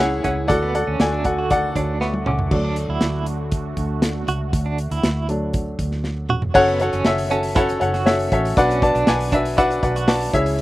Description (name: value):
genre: piano-driven pop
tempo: 119 BPM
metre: 4/4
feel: straight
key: unclear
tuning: A4 = 440 Hz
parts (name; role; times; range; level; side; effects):
- warm upright piano; accompaniment; 0.0-10.6 s; B2 to D6; -19 LUFS; left 1 dB; slapback echo
- lush unison pad; sustained chords; 0.0-6.5 s; C#3 to F#4; -31 LUFS; right 1 dB; chorus, phaser
- direct-recorded clean electric guitar; riff; 0.0-10.2 s; B3 to F#4; -26 LUFS; right 4 dB; tremolo, slapback echo
- vintage muted fingered electric bass; bass; 0.0-10.6 s; E1 to D2; -25 LUFS; right 1 dB; none
- modern studio drum kit; drums; 0.2-10.6 s; crash cymbal, hi-hat, kick drum, snare drum, toms; -23 LUFS; equal; none
room: little or no reverb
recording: recorded outdoors, with no room sound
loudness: -17 LUFS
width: side -16 dB against mid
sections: 0.0-2.5 A section; 2.5-6.5 B section; 6.5-10.6 C section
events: drum fill 2.0-2.5, 6.0-6.5; upright piano solo 2.5-6.5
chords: 0.5 D; 6.5 F#m; 8.6 Bm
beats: | 0.49 1.00 1.50 2.01 | 2.51 3.02 3.52 4.03 | 4.53 5.04 5.54 6.04 | 6.55 7.05 7.56 8.06 | 8.57 9.07 9.58 10.08 | 10.59